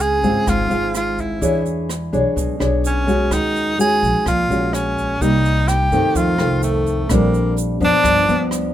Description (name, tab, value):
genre	bossa nova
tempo	127 BPM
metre	4/4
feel	straight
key	unclear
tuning	A4 = 441 Hz
part	breathy tenor saxophone	melody	0.0-8.5 s	A3 to Ab4	-19 LUFS	equal	none
part	nylon-string guitar	accompaniment	0.0-8.7 s	F2 to C#5	-20 LUFS	equal	none
part	upright bass	bass	0.0-8.7 s	G1 to G2	-22 LUFS	equal	none
part	tube shaker	percussion	0.0-8.7 s	none	-33 LUFS	right 8 dB	none
part	jazz brush drum kit	drums	0.2-8.6 s	hi-hat, kick drum, rim click	-28 LUFS	equal	none
room	little or no reverb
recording	minimal, uncompressed stereo recording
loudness	-15 LUFS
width	side -12 dB against mid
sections	0.0-8.7 A section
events	none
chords	0.0 Dbmaj7; 1.4 E13; 3.3 Ebm11; 5.2 Cm7; 6.2 F7; 7.1 Bb69; 8.0 G7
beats	0.00 0.47 0.94 | 1.42 1.89 2.37 2.84 | 3.31 3.79 4.26 4.73 | 5.20 5.68 6.15 6.62 | 7.10 7.57 8.04 8.52